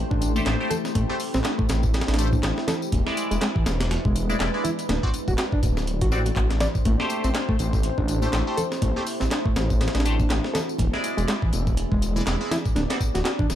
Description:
breakbeat, breaks; 122 BPM; 4/4; swing 58% on 16ths; A dorian; A4 = 440 Hz
deep dark ambient pad; sustained chords; 0.0-13.6 s; G#3 to D5; -30 LUFS; left 1 dB; chorus, built-in reverb, sidechain pumping
band-passed chord stab; stabs; 0.0-13.0 s; G#3 to D5; -31 LUFS; equal; phaser, ping-pong delay
detuned saw bass; bass; 0.0-13.6 s; D1 to A1; -25 LUFS; equal; tube saturation
reed electric piano; riff; 0.1-13.5 s; E3 to D5; -30 LUFS; equal; medium tremolo, overdrive, vintage 12-bit sampler grit, ping-pong delay
breakbeat sampler-style drum kit; drums; 0.1-13.6 s; hi-hat, kick drum, snare drum; -25 LUFS; equal; studio ambience
electronic tambourine and handclaps; drums; 0.2-13.6 s; -35 LUFS; left 1 dB; studio ambience
congas; percussion; 0.4-13.6 s; -35 LUFS; left 2 dB
digital ambience; -21 LUFS; side -11 dB against mid
0.0-13.6 A section
0.0 Am7; 2.9 E7; 4.9 D7; 6.9 Am7; 10.8 E7; 12.8 D7

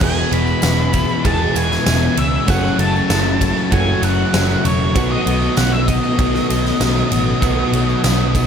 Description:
rock, shoegaze and dream pop; 97 BPM; 4/4; straight; E major; A4 = 440 Hz
octave-fuzz lead guitar; melody; 0.0-8.5 s; C#5 to B5; -22 LUFS; equal; distortion, analog delay
phased string machine; sustained chords; 0.0-8.5 s; E3 to E5; -29 LUFS; left 1 dB
direct-recorded clean electric guitar; riff; 0.0-8.5 s; E2 to G#4; -23 LUFS; right 10 dB; reverse reverb
overdriven electric guitar; riff; 0.0-8.5 s; E2 to B3; -24 LUFS; left 1 dB
thick fuzz guitar; riff; 0.0-8.5 s; E2 to B3; -22 LUFS; left 8 dB; distortion, ensemble chorus
vintage muted picked electric bass; bass; 0.0-8.5 s; E1 to C#2; -20 LUFS; equal
huge arena drum kit; drums; 0.0-8.5 s; crash cymbal, kick drum, ride cymbal, snare drum; -20 LUFS; equal
tambourine; percussion; 0.0-8.5 s; -35 LUFS; right 11 dB
light reverb, small room ambience; -14 LUFS; side -7 dB against mid
0.0-8.5 A section
0.0 E; 2.5 F#m7; 4.9 B7

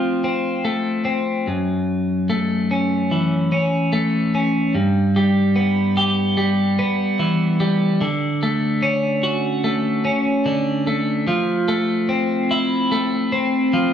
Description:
rock; 74 BPM; 4/4; straight; G lydian; A4 = 441 Hz
twelve-string electric guitar; solo; 0.0-13.9 s; F#2 to G4; -17 LUFS; equal
wet large studio reverb, RT60 0.9 s; band playing live in one room; -17 LUFS; side -9 dB against mid
0.0-4.7 A section; 4.7-13.9 B section
build-up 4.7-13.9
0.0 F; 1.5 F#m7; 4.7 G6; 8.0 Dmaj7; 11.3 Fmaj7

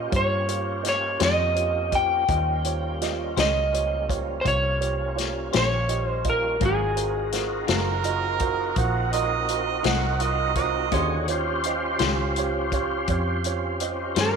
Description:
slow blues; 56 BPM (dotted quarters); 12/8; straight; Eb mixolydian; A4 = 439 Hz
electric slide guitar; melody; 0.0-14.4 s; Ab4 to G5; -25 LUFS; equal; slapback echo
warm upright piano; accompaniment; 0.0-14.4 s; F4 to Eb5; -30 LUFS; right 12 dB
overdriven tonewheel organ; sustained chords; 0.0-14.4 s; D3 to Db5; -30 LUFS; equal; slow rotary speaker, chorus vibrato
vintage muted fingered electric bass; bass; 0.0-14.4 s; Gb1 to G2; -28 LUFS; equal
vintage drum kit; drums; 0.1-14.3 s; hi-hat, kick drum, snare drum; -27 LUFS; left 5 dB
semi-hollow electric guitar; accompaniment; 1.2-14.4 s; Ab2 to C5; -32 LUFS; left 14 dB; tremolo
clear harmonica; second line; 7.7-11.3 s; Bb4 to Gb5; -26 LUFS; right 10 dB; overdrive
moderate echo chamber reverb, RT60 1.8 s, small room ambience; 1960s-style stereo with parts hard left and right; -22 LUFS; side -6 dB against mid
0.0-14.4 A section
0.0 Eb13; 6.6 Ab13; 10.9 Eb13

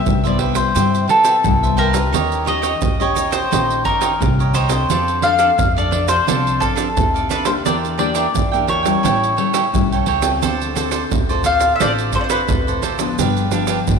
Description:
samba and choro; 87 BPM; 4/4; straight; A4 = 440 Hz
mandolin; melody; 0.0-12.8 s; A4 to F5; -18 LUFS; left 2 dB
nylon-string guitar; accompaniment; 0.0-14.0 s; G2 to A4; -24 LUFS; left 9 dB
upright bass; bass; 0.1-14.0 s; G1 to G2; -23 LUFS; left 1 dB
egg shaker, surdo and pandeiro; percussion; 0.1-14.0 s; -21 LUFS; right 4 dB
cavaquinho; accompaniment; 0.2-13.8 s; D4 to G5; -22 LUFS; right 8 dB
wet echo chamber reverb, RT60 2.5 s; 1960s-style stereo with parts hard left and right; -14 LUFS; side -6 dB against mid
0.0-14.0 A section
0.0 Cmaj7; 2.1 Eb9; 4.9 F6; 7.7 Em7b5; 9.0 A7; 10.4 Dm7; 13.2 G7

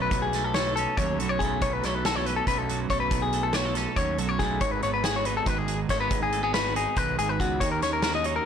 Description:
math rock and midwest emo; 280 BPM (eighths); 7/8; straight; A4 = 440 Hz
twelve-string electric guitar; accompaniment; 0.0-8.5 s; F#2 to A4; -31 LUFS; right 12 dB
clean electric guitar; arpeggios; 0.0-8.5 s; F#4 to D#5; -27 LUFS; left 5 dB
fuzz picked electric bass; bass; 0.0-8.4 s; G#1 to D#2; -32 LUFS; equal; overdrive
loose indie drum kit; drums; 0.1-8.3 s; hi-hat, kick drum, snare drum; -30 LUFS; right 1 dB
moderate studio reverb, RT60 0.8 s; blown-out, overdriven recording, overdrive; -24 LUFS; side -8 dB against mid
0.0-8.5 A section
0.0 B7sus2; 4.6 G#m7; 7.6 D#m7

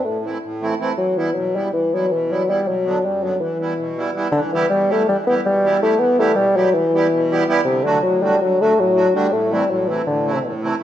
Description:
balkan folk; 324 BPM (eighths); 9/8; straight; E minor; A4 = 441 Hz
dark bassoon; melody; 0.0-10.5 s; C3 to B3; -17 LUFS; left 1 dB
accordion; accompaniment; 0.0-10.8 s; F#2 to G4; -22 LUFS; right 3 dB
wet recital hall reverb, RT60 1.4 s; dark, warm production; -16 LUFS; side -11 dB against mid
0.0-4.3 A section; 4.3-10.8 B section
0.0 Am; 1.0 Em; 2.6 Bm; 3.4 Em; 7.7 D; 9.3 Am

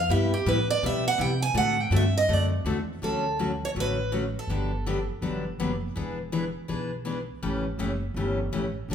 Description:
acoustic string swing (jazz manouche); 163 BPM; 4/4; swing 62% on 8ths; D major from 3.0 s; A4 = 439 Hz
picked steel-string acoustic guitar; melody; 0.0-5.1 s; G4 to Ab5; -27 LUFS; right 2 dB
upright bass; bass; 0.0-8.9 s; E1 to C3; -29 LUFS; right 1 dB
picked steel-string acoustic guitar; accompaniment; 0.1-8.9 s; C3 to A4; -29 LUFS; left 2 dB
moderate large studio reverb, RT60 1.2 s; band playing live in one room; -24 LUFS; side -8 dB against mid
0.0-3.0 A section; 3.0-8.9 B section
steel-string acoustic guitar solo 0.0-3.0
0.1 Cmaj7; 1.6 D7; 3.0 Dmaj7; 4.5 Gmaj7; 6.0 E7; 7.4 A7

